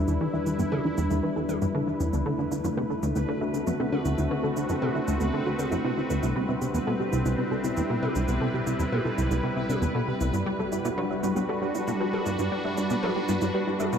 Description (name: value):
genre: ambient, sequencer-driven space music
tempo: 117 BPM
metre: 4/4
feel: straight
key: unclear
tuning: A4 = 438 Hz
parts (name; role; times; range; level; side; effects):
- sweeping resonant pad; sustained chords; 0.0-14.0 s; G3 to B4; -29 LUFS; left 1 dB; chorus
- plucky analog bass; riff; 0.0-14.0 s; C2 to G3; -28 LUFS; equal; wide subtle chorus, tape echo
- bubbling stepped-filter texture; texture; 0.0-14.0 s; B4; -39 LUFS; left 1 dB; chorus, built-in reverb
- soft round pluck; arpeggios; 0.1-14.0 s; B3 to E5; -33 LUFS; right 3 dB; chorus, auto-pan, tape echo
- electronic cabasa and toms; percussion; 0.1-14.0 s; none; -39 LUFS; equal; overdrive, tape echo
room: wet huge ambient reverb, RT60 8.1 s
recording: dark, warm production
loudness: -24 LUFS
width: side -7 dB against mid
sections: 0.0-14.0 A section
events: none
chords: 0.0 Em7; 2.1 D7; 6.2 Cmaj7; 10.3 Gmaj7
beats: | 0.08 0.59 1.10 1.62 | 2.13 2.64 3.16 3.67 | 4.18 4.70 5.21 5.72 | 6.23 6.75 7.26 7.77 | 8.28 8.80 9.31 9.82 | 10.34 10.85 11.36 11.87 | 12.39 12.90 13.41 13.93